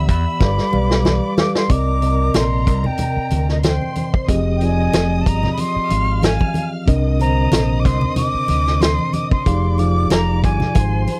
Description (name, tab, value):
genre	lush 1970s-style soul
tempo	93 BPM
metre	4/4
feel	swing 54% on 16ths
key	unclear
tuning	A4 = 439 Hz
part	jazz flute	melody	0.0-11.2 s	Eb5 to D6	-26 LUFS	equal	none
part	warm studio string section	second line	0.0-11.2 s	Bb4 to F6	-33 LUFS	equal	none
part	mellow tine electric piano	accompaniment	0.0-11.2 s	C3 to F#5	-24 LUFS	equal	none
part	overdriven fingered electric bass	bass	0.0-11.0 s	F1 to E2	-22 LUFS	equal	none
part	vintage drum kit	drums	0.1-11.2 s	hi-hat, kick drum, snare drum	-20 LUFS	equal	none
part	congas	percussion	0.4-11.2 s	none	-26 LUFS	equal	none
room	light reverb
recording	dry, close 1970s-style studio recording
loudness	-17 LUFS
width	mono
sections	0.0-1.7 A section; 1.7-11.2 B section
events	drum fill 0.4-1.7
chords	0.4 G7; 1.7 Cm7; 4.3 Fm7; 6.9 Cm7; 9.5 Fm7